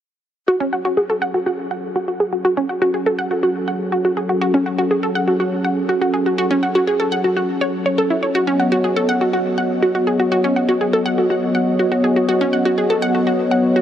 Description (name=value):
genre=techno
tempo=122 BPM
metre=4/4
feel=straight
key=F# dorian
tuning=A4 = 440 Hz
part: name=warm analog pad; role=sustained chords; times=0.5-13.8 s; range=F#3 to D#5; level=-20 LUFS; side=equal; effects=wide subtle chorus
part: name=wide unison pluck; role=arpeggios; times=0.5-13.8 s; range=C#4 to F#5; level=-17 LUFS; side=equal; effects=tape echo
room=moderate huge ambient reverb, RT60 8.9 s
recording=heavily compressed radio sound, multiband compression, lossy compression artefacts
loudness=-16 LUFS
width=side -10 dB against mid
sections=0.5-13.8 A section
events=filter sweep on synth arpeggio sound 0.5-13.8; filter sweep on analog synth pad 0.5-13.8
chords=0.5 F#madd9; 8.3 B/F#